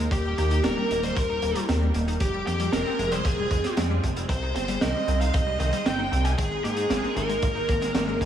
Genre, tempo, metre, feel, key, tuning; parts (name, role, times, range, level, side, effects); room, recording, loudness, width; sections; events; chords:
synthwave; 115 BPM; 4/4; straight; F minor; A4 = 437 Hz
lush unison pad; sustained chords; 0.0-8.3 s; G3 to C5; -33 LUFS; right 2 dB; chorus, phaser, sidechain pumping
analog pluck; arpeggios; 0.0-8.3 s; Eb3 to Eb4; -33 LUFS; left 3 dB; chorus, tape echo
chorused synth bass; bass; 0.0-8.3 s; Eb1 to Ab2; -27 LUFS; equal; sidechain pumping
biting lead guitar; melody; 0.1-8.2 s; G4 to Ab5; -29 LUFS; equal; overdrive, tape echo
string machine, violins; second line; 0.1-8.2 s; G4 to Ab5; -34 LUFS; equal; ensemble chorus, vintage 12-bit sampler grit, tape echo
crunchy breakbeat drum kit; drums; 0.1-8.3 s; hi-hat, shaker, snare drum; -30 LUFS; right 2 dB; gated reverb
kick drum; drums; 0.1-8.3 s; -27 LUFS; equal
light reverb, small room ambience; -22 LUFS; side -10 dB against mid
0.0-8.3 A section
0.1 Eb; 2.2 Fmadd9; 4.3 Cm; 6.4 Absus2